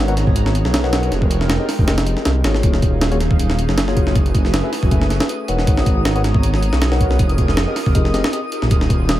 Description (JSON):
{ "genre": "drum and bass, jungle", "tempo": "158 BPM", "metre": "4/4", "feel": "swing 54% on 16ths", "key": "unclear", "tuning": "A4 = 440 Hz", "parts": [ { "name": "airy breathy pad", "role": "sustained chords", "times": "0.0-9.2 s", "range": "Gb3 to Bb5", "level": "-26 LUFS", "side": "right 2 dB", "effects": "chorus" }, { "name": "mellow tine electric piano", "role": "stabs", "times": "0.0-8.4 s", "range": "Bb3 to Gb5", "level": "-25 LUFS", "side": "left 4 dB", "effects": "dub echo" }, { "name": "detuned saw bass", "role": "bass", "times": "0.0-9.2 s", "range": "Eb1 to C2", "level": "-18 LUFS", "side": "equal", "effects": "tube saturation" }, { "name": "breakbeat sampler-style drum kit", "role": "drums", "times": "0.1-9.2 s", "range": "hi-hat, kick drum, snare drum", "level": "-18 LUFS", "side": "equal", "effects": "none" }, { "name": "twinkling granular texture", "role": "texture", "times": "3.5-9.2 s", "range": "Eb6", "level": "-31 LUFS", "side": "equal", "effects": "built-in reverb" } ], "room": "little or no reverb", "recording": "none", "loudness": "-14 LUFS", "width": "side -14 dB against mid", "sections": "0.0-9.2 A section", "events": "none", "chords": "0.0 Abm11; 1.1 Fm11; 2.6 Ebm11; 4.2 Gbm11; 5.7 Abm11; 7.2 Fm11", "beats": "0.36 0.74 | 1.12 1.50 1.88 2.26 | 2.64 3.02 3.40 3.78 | 4.16 4.54 4.92 5.30 | 5.68 6.06 6.43 6.82 | 7.20 7.58 7.95 8.33 | 8.71 9.09" }